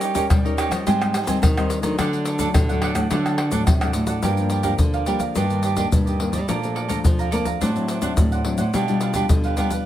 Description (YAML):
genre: samba and choro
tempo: 107 BPM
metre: 4/4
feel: straight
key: G minor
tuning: A4 = 441 Hz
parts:
  - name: cavaquinho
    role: accompaniment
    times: 0.0-9.9 s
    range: D4 to Bb5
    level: -26 LUFS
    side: right 7 dB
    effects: none
  - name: nylon-string guitar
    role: accompaniment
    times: 0.0-9.8 s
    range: F2 to Bb4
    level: -25 LUFS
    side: left 4 dB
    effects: none
  - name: nylon-string guitar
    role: bass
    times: 0.0-9.7 s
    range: G2 to B3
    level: -25 LUFS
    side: right 1 dB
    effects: none
  - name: egg shaker, pandeiro, surdo and tamborim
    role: percussion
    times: 0.0-9.9 s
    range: none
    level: -22 LUFS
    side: left 1 dB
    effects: none
room: light reverb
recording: close, detailed microphones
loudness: -18 LUFS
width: side -12 dB against mid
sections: 0.0-4.2 A section; 4.2-9.9 B section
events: none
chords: 0.0 Eb7/G; 0.9 Abmaj7; 2.0 D; 4.2 Gm7; 5.4 Ebmaj7/G; 6.5 Bbmaj7; 7.6 D7/A; 8.7 G7/B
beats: 0.30 0.86 1.43 | 1.99 2.55 3.11 3.67 | 4.24 4.80 5.36 5.92 | 6.49 7.05 7.62 8.18 | 8.74 9.31